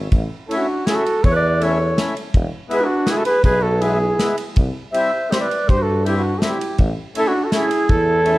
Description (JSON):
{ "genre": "alpine folk, alpine dance band", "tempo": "162 BPM", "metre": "3/4", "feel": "rubato", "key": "A major", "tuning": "A4 = 439 Hz", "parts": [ { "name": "clear tuba", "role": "bass", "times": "0.0-8.4 s", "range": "E1 to G2", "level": "-22 LUFS", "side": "equal", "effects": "none" }, { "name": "natural country drum kit", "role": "drums", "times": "0.1-8.3 s", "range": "kick drum, ride cymbal, snare drum", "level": "-20 LUFS", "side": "equal", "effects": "none" }, { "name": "mellow flugelhorn", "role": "melody", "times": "0.5-8.4 s", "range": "F#4 to E5", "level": "-20 LUFS", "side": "equal", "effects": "none" }, { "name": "breathy bright long shakuhachi", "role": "second line", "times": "0.5-8.4 s", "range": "D4 to C5", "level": "-24 LUFS", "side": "right 3 dB", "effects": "none" }, { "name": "accordion", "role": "accompaniment", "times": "0.5-8.4 s", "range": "G3 to E4", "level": "-25 LUFS", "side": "left 2 dB", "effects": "none" } ], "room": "light reverb", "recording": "dark, warm production", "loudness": "-16 LUFS", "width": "side -18 dB against mid", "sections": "0.0-8.4 A section", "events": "none", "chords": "0.0 A; 2.3 E; 4.6 C; 6.8 A" }